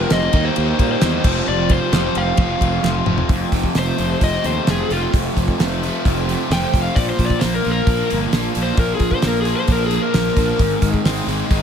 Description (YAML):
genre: classic rock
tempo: 132 BPM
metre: 4/4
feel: straight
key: F mixolydian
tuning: A4 = 440 Hz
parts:
  - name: overdriven slide guitar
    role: melody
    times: 0.0-10.9 s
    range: F4 to G5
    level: -23 LUFS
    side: left 4 dB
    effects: analog delay
  - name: fingerpicked twelve-string acoustic guitar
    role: accompaniment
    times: 0.0-11.6 s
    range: F2 to Ab4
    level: -28 LUFS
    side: right 8 dB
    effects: none
  - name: distorted electric guitar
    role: riff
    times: 0.0-11.6 s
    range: F2 to F4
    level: -24 LUFS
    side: left 13 dB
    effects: overdrive
  - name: overdriven electric guitar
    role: riff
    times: 0.0-11.6 s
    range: F2 to Eb4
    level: -24 LUFS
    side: right 12 dB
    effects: none
  - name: fuzz fingered electric bass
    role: bass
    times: 0.0-11.6 s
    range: F1 to Bb2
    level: -22 LUFS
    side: equal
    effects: overdrive
  - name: damped 70s drum kit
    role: drums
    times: 0.1-11.6 s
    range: crash cymbal, hi-hat, kick drum, ride cymbal, snare drum, toms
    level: -20 LUFS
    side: equal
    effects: none
  - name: group handclap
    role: percussion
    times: 0.1-3.0 s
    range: none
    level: -35 LUFS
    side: right 5 dB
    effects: none
room: light reverb, small room ambience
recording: none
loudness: -16 LUFS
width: side -8 dB against mid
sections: 0.0-3.3 A section; 3.3-11.6 B section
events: drum fill 2.8-3.3; electric slide guitar solo 3.3-11.6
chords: 0.3 Eb; 1.3 Fsus2; 2.4 F; 7.0 Bb; 10.6 Ab